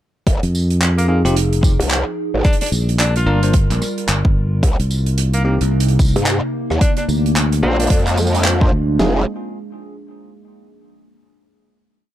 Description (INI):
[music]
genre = glitch hop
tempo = 110 BPM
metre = 4/4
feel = swing 60% on 16ths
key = F dorian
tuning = A4 = 444 Hz
[part]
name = warbly tape-like pad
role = sustained chords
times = 0.9-9.2 s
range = C3 to Bb4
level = -25 LUFS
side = equal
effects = chorus, built-in reverb, phaser, sidechain pumping
[part]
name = growl bass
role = bass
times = 0.3-9.2 s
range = F1 to G2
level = -17 LUFS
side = equal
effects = chorus, tube saturation
[part]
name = modern studio drum kit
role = drums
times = 0.3-8.6 s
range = handclaps, hi-hat, rim click, tambourine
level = -23 LUFS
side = right 2 dB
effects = none
[part]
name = pop drum kit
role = drums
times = 0.3-9.1 s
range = kick drum, snare drum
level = -15 LUFS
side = equal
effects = overdrive
[part]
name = fingered electric bass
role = bass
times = 0.4-9.0 s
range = F1 to F2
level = -16 LUFS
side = equal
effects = tube saturation
[part]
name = bright tenor saxophone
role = melody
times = 1.0-8.0 s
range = Bb3 to F4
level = -26 LUFS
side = left 1 dB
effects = tape echo
[part]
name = bell-like tine electric piano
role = stabs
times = 1.1-9.2 s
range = Bb3 to C5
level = -24 LUFS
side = equal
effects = sidechain pumping, tape echo
[sound]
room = light reverb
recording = dark, warm production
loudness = -14 LUFS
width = side -13 dB against mid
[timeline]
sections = 0.3-9.0 drop; 9.0-11.2 final chord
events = drop 0.3-9.0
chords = 0.3 Fm7; 2.5 Gm7; 4.6 Cm7; 6.8 Bb7; 9.0 Fm7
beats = | 0.27 0.81 1.36 1.90 | 2.45 3.00 3.54 4.09 | 4.63 5.18 5.72 6.27 | 6.81 7.36 7.90 8.45 | 8.99